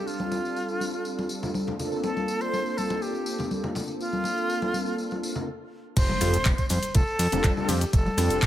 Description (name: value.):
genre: nu-disco, nu disco.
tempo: 122 BPM.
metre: 4/4.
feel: straight.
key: F major.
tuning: A4 = 441 Hz.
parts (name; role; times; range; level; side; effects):
breathy bright concert flute; melody; 0.0-8.5 s; F4 to C5; -30 LUFS; equal; digital delay.
mellow synth brass; accompaniment; 0.0-8.5 s; G3 to A4; -30 LUFS; equal; chorus.
tambourine and congas; percussion; 0.1-8.5 s; none; -33 LUFS; left 2 dB; none.
fat analog bass; bass; 6.0-8.5 s; F1 to F2; -26 LUFS; equal; tube saturation, sidechain pumping.
electronic kick drum; drums; 6.0-8.5 s; none; -22 LUFS; equal; none.
house drum kit; drums; 6.0-8.5 s; crash cymbal, handclaps, hi-hat, ride cymbal, rim click, shaker; -30 LUFS; left 1 dB; none.
impact; sound effects; 6.0-7.9 s; none; -35 LUFS; equal; none.
room: light reverb.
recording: none.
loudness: -24 LUFS.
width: side -12 dB against mid.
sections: 0.0-6.0 A section; 6.0-8.5 B section.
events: stop 5.5-6.0; drop 6.0-8.5; impact 6.0-7.9.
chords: 0.0 F6; 1.8 Bbmaj7; 6.0 F6.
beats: | 0.07 0.56 1.05 1.54 | 2.03 2.52 3.02 3.51 | 4.00 4.49 4.98 5.47 | 5.97 6.46 6.95 7.44 | 7.93 8.43.